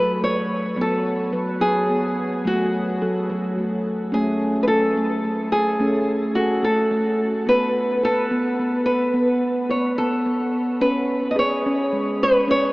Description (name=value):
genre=world meditative, meditative tuned percussion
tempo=72 BPM (dotted quarters)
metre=6/8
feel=straight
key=unclear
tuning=A4 = 440 Hz
part: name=nylon-string guitar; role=melody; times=0.0-12.7 s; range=F#4 to D#5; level=-21 LUFS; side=equal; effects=shimmer reverb, tape echo
part: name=handpan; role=arpeggios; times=0.0-12.7 s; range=F#3 to B4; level=-22 LUFS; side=equal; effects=tape echo
room=wet huge ambient reverb, RT60 8.2 s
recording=in a vast, echoing space, AM radio sound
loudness=-19 LUFS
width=side -21 dB against mid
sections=0.0-4.1 A section; 4.1-12.7 B section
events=none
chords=0.0 F#m; 0.8 F#madd11; 2.4 F#m; 4.1 A; 7.5 Asus2/B; 10.8 C#5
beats=| 0.77 1.60 | 2.44 3.28 | 4.12 4.96 | 5.79 6.63 | 7.46 8.30 | 9.14 9.97 | 10.81 11.65 | 12.48